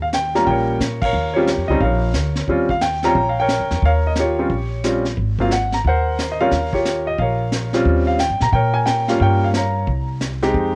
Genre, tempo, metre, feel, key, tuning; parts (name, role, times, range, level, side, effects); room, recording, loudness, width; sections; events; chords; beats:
jazz piano trio; 179 BPM; 4/4; swing 64% on 8ths; Eb mixolydian; A4 = 440 Hz
clear baby grand piano; melody; 0.0-10.8 s; Gb3 to Bb5; -21 LUFS; equal; cassette tape
upright bass; bass; 0.0-10.8 s; Ab1 to Bb2; -24 LUFS; equal
vintage brush drum kit; drums; 0.1-10.8 s; brushed snare drum, hi-hat, kick drum, ride cymbal, snare drum; -29 LUFS; equal; cassette tape
light reverb; home recording on cassette; -19 LUFS; mono
0.0-10.8 A section
band accent 1.0
0.0 Eb9; 5.2 Ab13; 6.5 Eb9; 9.2 Gm7b5; 9.9 N.C.
0.13 0.47 0.81 | 1.14 1.48 1.81 2.15 | 2.48 2.82 3.15 3.49 | 3.83 4.16 4.50 4.83 | 5.17 5.51 5.84 6.18 | 6.51 6.85 7.19 7.52 | 7.86 8.20 8.53 8.87 | 9.20 9.54 9.88 10.21 | 10.55